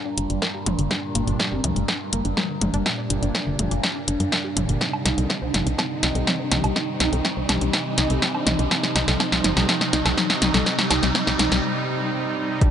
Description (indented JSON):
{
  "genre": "melodic techno",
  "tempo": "123 BPM",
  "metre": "4/4",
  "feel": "straight",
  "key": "unclear",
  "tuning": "A4 = 438 Hz",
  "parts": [
    { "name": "mellow synth brass", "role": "melody", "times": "0.0-12.7 s", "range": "G3 to Eb4", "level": "-30 LUFS", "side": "right 1 dB", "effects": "chorus, phaser, sidechain pumping, digital delay" },
    { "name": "deep dark ambient pad", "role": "sustained chords", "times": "0.0-12.7 s", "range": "G3 to Eb5", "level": "-34 LUFS", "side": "equal", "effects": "chorus, built-in reverb, sidechain pumping" },
    { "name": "overtone-sweeping drone", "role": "drone", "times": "0.0-11.6 s", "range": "G2 to Bb2", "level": "-37 LUFS", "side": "equal", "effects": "chorus, built-in reverb, phaser, sidechain pumping" },
    { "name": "riser", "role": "sound effects", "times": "0.4-11.6 s", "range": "none", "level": "-32 LUFS", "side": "left 1 dB", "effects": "none" },
    { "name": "wide unison pluck", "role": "arpeggios", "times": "0.1-12.7 s", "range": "D3 to C5", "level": "-32 LUFS", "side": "equal", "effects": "sidechain pumping, digital delay" },
    { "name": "tight sequencer bass", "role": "bass", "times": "0.2-11.6 s", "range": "G1 to G2", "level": "-25 LUFS", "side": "equal", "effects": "sidechain pumping" },
    { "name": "punchy analog drum machine", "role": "drums", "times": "0.2-12.7 s", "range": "hi-hat, snare drum, toms, woodblock", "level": "-23 LUFS", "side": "equal", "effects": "none" },
    { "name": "electronic kick drum", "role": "drums", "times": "0.4-12.7 s", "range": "none", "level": "-25 LUFS", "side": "equal", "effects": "high-pass filter on kick, high-pass filter on room" },
    { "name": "brassy analog pad", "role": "stabs", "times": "0.9-12.7 s", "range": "Bb2 to Eb4", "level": "-29 LUFS", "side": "right 2 dB", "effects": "chorus, cassette tape, sidechain pumping, digital delay" }
  ],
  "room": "moderate huge ambient reverb, RT60 7.6 s",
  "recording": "nothing above 10.9 kHz",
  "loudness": "-20 LUFS",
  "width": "side -9 dB against mid",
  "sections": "0.0-12.6 A section",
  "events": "build-up 0.0-12.6; drum fill 0.0-11.6; filter sweep on synth pluck 0.0-12.6; filter sweep on analog polysynth 0.0-12.6; filter sweep on analog synth pad 0.0-12.6; riser 0.4-11.6; break 11.6-12.6",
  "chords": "0.0 Gm; 4.8 Cm"
}